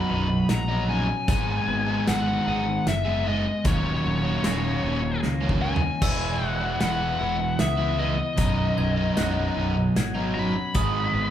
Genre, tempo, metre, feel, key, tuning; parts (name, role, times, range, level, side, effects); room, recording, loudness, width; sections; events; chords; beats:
post-rock; 76 BPM; 3/4; straight; B major; A4 = 440 Hz
biting lead guitar; melody; 0.0-11.3 s; C#5 to B5; -29 LUFS; left 3 dB; overdrive
twelve-string electric guitar; arpeggios; 0.0-11.3 s; B1 to G#4; -32 LUFS; left 2 dB; spring reverb
overdriven semi-hollow guitar; riff; 0.0-11.3 s; B1 to G#4; -26 LUFS; right 1 dB
growling fingered electric bass; bass; 0.1-11.3 s; B0 to C#2; -29 LUFS; equal; overdrive
loose indie drum kit; drums; 0.5-10.9 s; crash cymbal, hi-hat, kick drum, snare drum, toms; -27 LUFS; equal
glockenspiel with brass mallets; arpeggios; 6.0-11.3 s; D#6 to G#6; -35 LUFS; right 7 dB
moderate large studio reverb, RT60 1.3 s; band playing live in one room; -22 LUFS; side -10 dB against mid
0.0-11.3 A section
drum fill 5.2-6.0
0.0 B; 1.3 G#m; 3.7 D#m7; 6.0 Emaj7; 8.4 B; 10.8 G#m
0.49 | 1.28 2.07 2.86 | 3.65 4.44 5.23 | 6.02 6.81 7.60 | 8.39 9.18 9.96 | 10.75